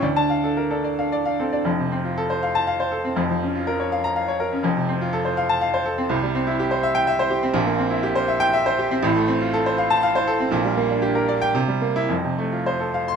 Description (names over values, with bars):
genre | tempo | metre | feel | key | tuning
classical, virtuoso piano study | 106-126 BPM | 3/4 | rubato | F major | A4 = 440 Hz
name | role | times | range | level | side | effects
bright baby grand piano | solo | 0.0-13.2 s | F1 to C6 | -19 LUFS | equal | none
room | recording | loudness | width
moderate large studio reverb, RT60 0.8 s | close, detailed microphones | -19 LUFS | side -6 dB against mid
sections
0.0-1.7 A section; 1.7-13.2 B section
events
none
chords
0.0 Dm; 1.7 F; 3.2 Bbm/F; 4.6 F; 6.1 C; 7.6 C7/Bb; 9.0 F/A; 10.5 Gm/Bb; 11.6 C7; 12.1 F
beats
| 0.03 0.57 1.12 | 1.66 2.17 2.67 | 3.17 3.66 4.16 | 4.65 5.13 5.62 | 6.11 6.59 7.08 | 7.55 8.04 8.55 | 9.05 9.54 10.04 | 10.54 11.04 11.56 | 12.10 12.66